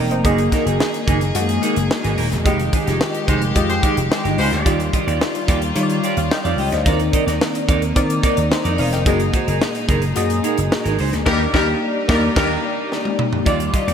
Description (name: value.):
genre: polished 1980s jazz-funk pop.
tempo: 109 BPM.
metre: 4/4.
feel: straight.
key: Eb major.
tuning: A4 = 437 Hz.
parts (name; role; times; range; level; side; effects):
FM electric piano; accompaniment; 0.0-13.9 s; F3 to Bb5; -22 LUFS; left 3 dB; phaser, analog chorus.
rich studio string section; sustained chords; 0.0-13.9 s; Bb2 to Ab4; -26 LUFS; equal; none.
semi-hollow electric guitar; riff; 0.0-13.9 s; Ab3 to Eb5; -24 LUFS; right 5 dB; wide subtle chorus.
vintage slap bass; bass; 0.0-13.9 s; Eb1 to Eb3; -22 LUFS; equal; none.
crisp fusion drum kit; drums; 0.1-13.9 s; crash cymbal, hi-hat, kick drum, snare drum, toms; -21 LUFS; equal; none.
warm horn section; second line; 3.3-4.7, 11.3-12.5 s; G3 to C5; -25 LUFS; left 3 dB; none.
room: moderate lush hall reverb, RT60 2.6 s.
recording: bright 1980s-style digital production.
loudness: -16 LUFS.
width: side -8 dB against mid.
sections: 0.0-13.5 A section.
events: band accent 2.5-4.7, 11.3-13.5; drum fill 12.9-13.5.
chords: 0.2 Gb69; 2.5 Fm9; 4.7 Ebmaj9; 6.9 Cm9/Eb; 9.1 Gb69; 11.3 Ebmaj7.